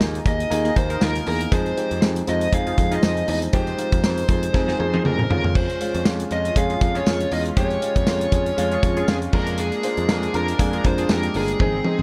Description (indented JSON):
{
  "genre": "1980s-style pop",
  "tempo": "119 BPM",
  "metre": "4/4",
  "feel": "swing 55% on 16ths",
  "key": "unclear",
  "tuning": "A4 = 441 Hz",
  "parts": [
    { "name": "warm grand piano", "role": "accompaniment", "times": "0.0-12.0 s", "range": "F3 to C5", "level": "-28 LUFS", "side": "equal", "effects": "none" },
    { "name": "modern bright picked electric bass", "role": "bass", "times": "0.0-12.0 s", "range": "G1 to F2", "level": "-28 LUFS", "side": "equal", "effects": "none" },
    { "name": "modern studio drum kit", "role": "drums", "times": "0.0-12.0 s", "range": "crash cymbal, hi-hat, kick drum, snare drum, tambourine, toms", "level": "-25 LUFS", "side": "equal", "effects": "none" },
    { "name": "dark smooth lead guitar", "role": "melody", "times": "0.3-12.0 s", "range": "Ab4 to F5", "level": "-28 LUFS", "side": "equal", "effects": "overdrive, delay" },
    { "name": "funky polysynth comp", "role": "stabs", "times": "0.6-11.2 s", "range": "Bb3 to Bb4", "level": "-34 LUFS", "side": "equal", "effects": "chorus" },
    { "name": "chorused pulse-width pad", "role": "sustained chords", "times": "5.5-12.0 s", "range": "Ab3 to F4", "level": "-34 LUFS", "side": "equal", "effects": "none" }
  ],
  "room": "light reverb, small room ambience",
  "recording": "none",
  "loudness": "-21 LUFS",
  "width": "mono",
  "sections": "0.0-12.0 A section",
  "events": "drum fill 4.5-5.6, 11.6-12.0",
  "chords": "0.0 Ebsus4; 1.5 Fm7; 5.3 Db/F; 9.3 Bb7/F"
}